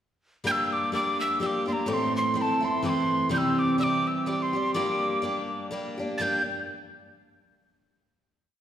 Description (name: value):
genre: celtic folk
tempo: 126 BPM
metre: 3/4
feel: swing 56% on 8ths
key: G dorian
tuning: A4 = 440 Hz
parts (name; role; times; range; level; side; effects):
- picked steel-string acoustic guitar; accompaniment; 0.4-6.4 s; A2 to G4; -27 LUFS; equal; none
- breathy mellow wooden whistle; melody; 0.5-6.4 s; A5 to A6; -27 LUFS; right 1 dB; none
room: wet concert hall reverb, RT60 1.8 s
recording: recorded in a church or concert hall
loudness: -24 LUFS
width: side -10 dB against mid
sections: 0.4-6.2 A section; 6.2-7.6 final chord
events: none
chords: 0.4 Gm; 1.9 Am; 3.3 C; 4.7 Gm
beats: | 0.45 0.92 1.40 | 1.88 2.35 2.83 | 3.31 3.79 4.26 | 4.74 5.22 5.70 | 6.18